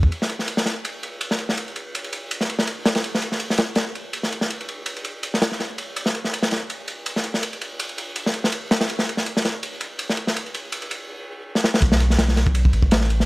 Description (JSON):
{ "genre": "drum and bass, jungle", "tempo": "164 BPM", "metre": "4/4", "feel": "swing 54% on 16ths", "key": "unclear", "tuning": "A4 = 439 Hz", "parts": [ { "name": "soft dub sub bass", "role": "bass", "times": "0.0-0.1, 11.8-13.3 s", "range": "A1 to B1", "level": "-18 LUFS", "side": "equal", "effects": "none" }, { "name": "crunchy breakbeat drum kit", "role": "drums", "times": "0.0-13.3 s", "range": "kick drum, ride cymbal, snare drum", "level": "-21 LUFS", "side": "equal", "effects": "high-pass filter on kick, high-pass filter on cymbals, high-pass filter on snare, high-pass filter on room" } ], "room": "little or no reverb", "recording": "none", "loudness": "-21 LUFS", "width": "side -22 dB against mid", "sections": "0.1-11.8 A section; 11.8-13.3 B section", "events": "drum fill 11.5; drop 11.8-13.3", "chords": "none" }